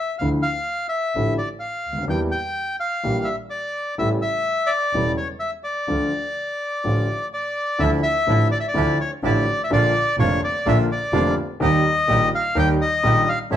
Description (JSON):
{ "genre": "tango", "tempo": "127 BPM", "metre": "4/4", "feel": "rubato", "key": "D harmonic minor", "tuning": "A4 = 438 Hz", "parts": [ { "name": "bandoneon", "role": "melody", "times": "0.0-13.6 s", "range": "C#5 to G5", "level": "-22 LUFS", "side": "left 2 dB", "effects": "none" }, { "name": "warm concert grand piano", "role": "accompaniment", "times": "0.2-13.6 s", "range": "E1 to G4", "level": "-22 LUFS", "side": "equal", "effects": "none" }, { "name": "warm double bass", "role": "bass", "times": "0.2-13.6 s", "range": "E1 to E2", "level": "-25 LUFS", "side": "right 2 dB", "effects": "none" }, { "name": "bandoneon", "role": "stabs", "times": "7.8-13.6 s", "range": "F3 to A4", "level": "-28 LUFS", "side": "right 8 dB", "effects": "none" } ], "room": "moderate large studio reverb, RT60 0.8 s", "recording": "band playing live in one room", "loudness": "-19 LUFS", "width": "side -10 dB against mid", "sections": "0.0-7.8 A section; 7.8-13.6 A section", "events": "none", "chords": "0.2 Dmadd9; 2.1 Edim; 4.0 A7; 5.9 Dm; 7.8 Dmadd9; 9.7 Bb; 11.6 Eb" }